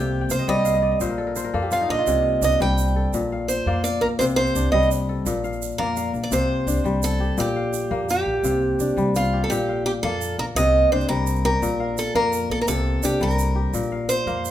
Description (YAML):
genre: west african traditional, West African string and xylophone music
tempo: 113 BPM (dotted quarters)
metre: 12/8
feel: straight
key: C dorian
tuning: A4 = 441 Hz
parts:
  - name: picked acoustic archtop guitar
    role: melody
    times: 0.0-14.5 s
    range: F4 to G5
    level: -22 LUFS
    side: right 2 dB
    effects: none
  - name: kora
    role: arpeggios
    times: 0.0-14.5 s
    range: Bb2 to G5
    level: -24 LUFS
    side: left 3 dB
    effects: none
  - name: upright bass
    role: bass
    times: 0.0-14.5 s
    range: Bb1 to F2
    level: -26 LUFS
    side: equal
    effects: none
  - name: egg shaker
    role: percussion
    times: 0.3-14.5 s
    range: none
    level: -33 LUFS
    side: right 10 dB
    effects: none
room: moderate recital hall reverb, RT60 1.6 s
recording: minimal, uncompressed stereo recording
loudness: -19 LUFS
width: side -12 dB against mid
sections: 0.0-6.3 A section; 6.3-14.5 B section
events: steel-string acoustic guitar solo 0.0-6.3; kora fill 0.2-2.1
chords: 0.0 Cm; 1.0 Bb5; 2.1 Cm; 3.1 Bb; 4.2 C5; 5.3 Bb; 6.3 C5; 7.4 Bb5; 8.4 C5; 9.5 Bb5; 10.6 Cm; 11.6 Bb5; 12.7 C5; 13.7 Bb5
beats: 0.47 1.01 1.54 | 2.07 2.60 3.13 3.66 | 4.20 4.73 5.26 5.79 | 6.32 6.85 7.38 7.91 | 8.44 8.97 9.50 10.03 | 10.56 11.09 11.62 12.15 | 12.68 13.21 13.74 14.27